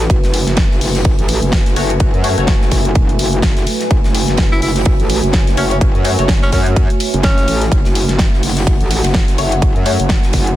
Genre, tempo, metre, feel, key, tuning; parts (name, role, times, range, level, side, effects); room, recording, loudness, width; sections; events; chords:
bass house; 126 BPM; 4/4; swing 58% on 16ths; F# minor; A4 = 441 Hz
dark analog pad; sustained chords; 0.0-10.6 s; A3 to F#5; -24 LUFS; right 1 dB; chorus, sidechain pumping
metallic wobble bass; bass; 0.0-10.6 s; E1 to F#2; -17 LUFS; equal; distortion, chorus, tube saturation, sidechain pumping
big-room dance drum kit; drums; 0.0-10.6 s; hi-hat, snare drum; -21 LUFS; left 1 dB
tight metal drum kit; drums; 0.0-10.5 s; hi-hat, ride cymbal, snare drum; -28 LUFS; right 2 dB; sidechain pumping on cymbals, high-pass filter on cymbals, sidechain pumping on hats, high-pass filter on hats, high-pass filter on snare, high-pass filter on room
deep dark ambient pad; texture; 0.0-10.6 s; F#4 to G#5; -24 LUFS; equal; chorus, built-in reverb, sidechain pumping
electronic kick drum; drums; 0.1-10.4 s; -14 LUFS; equal
band-passed chord stab; stabs; 1.8-2.5, 5.6-6.3, 9.4-10.0 s; A3 to C#5; -22 LUFS; left 3 dB; phaser, lush chorus, sidechain pumping, dub echo
bright alto saxophone; melody; 4.5-7.6 s; C#4 to E4; -23 LUFS; equal; dub echo
light reverb, small room ambience; dense, heavily limited modern master; -11 LUFS; side -14 dB against mid
0.0-10.6 A section
0.0 F#m